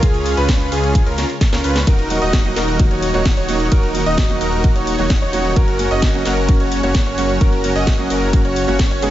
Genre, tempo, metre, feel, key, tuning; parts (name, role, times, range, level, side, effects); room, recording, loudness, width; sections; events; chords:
EDM, festival progressive house; 130 BPM; 4/4; straight; F# major; A4 = 441 Hz
lush unison pad; sustained chords; 0.0-9.1 s; C#3 to F#4; -28 LUFS; left 1 dB; chorus, phaser, sidechain pumping
warm concert grand piano; arpeggios; 0.0-9.1 s; G#4 to D#5; -24 LUFS; right 1 dB; sidechain pumping, digital delay
supersaw chords; riff; 0.0-9.1 s; C#4 to D#5; -21 LUFS; equal; sidechain pumping, digital delay
detuned saw bass; bass; 0.0-9.1 s; D#1 to C#2; -22 LUFS; equal; sidechain pumping
electronic kick drum; drums; 0.0-8.9 s; -15 LUFS; equal
house drum kit; drums; 0.0-9.1 s; hi-hat, ride cymbal, snare drum; -25 LUFS; equal
warm concert grand piano; accompaniment; 2.1-9.1 s; G#2 to G#4; -23 LUFS; right 3 dB; sidechain pumping, digital delay
little or no reverb; nothing above 7.7 kHz; -14 LUFS; side -13 dB against mid
0.0-9.1 A section
drum fill 1.2-1.9
0.0 C#; 1.9 D#m; 5.6 F#